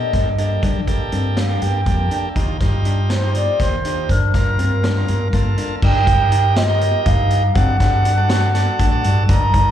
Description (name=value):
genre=progressive instrumental, band music in an uneven meter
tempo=242 BPM (eighths)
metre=7/8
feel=straight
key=G minor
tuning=A4 = 444 Hz
part: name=baroque flute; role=melody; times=0.0-9.7 s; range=Bb4 to Bb5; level=-21 LUFS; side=right 1 dB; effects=slapback echo, ping-pong delay
part: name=bright tonewheel organ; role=accompaniment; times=0.0-9.7 s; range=Bb3 to A5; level=-26 LUFS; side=right 2 dB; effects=stopped rotary speaker, slapback echo
part: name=bell-like tine electric piano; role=arpeggios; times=0.1-9.7 s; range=Bb3 to F#4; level=-30 LUFS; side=left 4 dB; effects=auto-pan, slapback echo, ping-pong delay
part: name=mellow fretless electric bass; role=bass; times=0.1-9.7 s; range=A1 to G3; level=-18 LUFS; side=equal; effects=none
part: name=vintage drum kit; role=drums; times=0.1-9.7 s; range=crash cymbal, hi-hat, kick drum, snare drum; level=-21 LUFS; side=equal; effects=none
room=light reverb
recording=live gig heard through the venue's PA, club reverb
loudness=-15 LUFS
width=side -10 dB against mid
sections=0.0-5.8 A section; 5.8-9.7 B section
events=tonewheel organ fill 8.5-9.3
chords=0.0 Gmadd9; 2.4 Ebadd9; 4.1 Gm7; 5.8 Eb/G; 7.6 D/G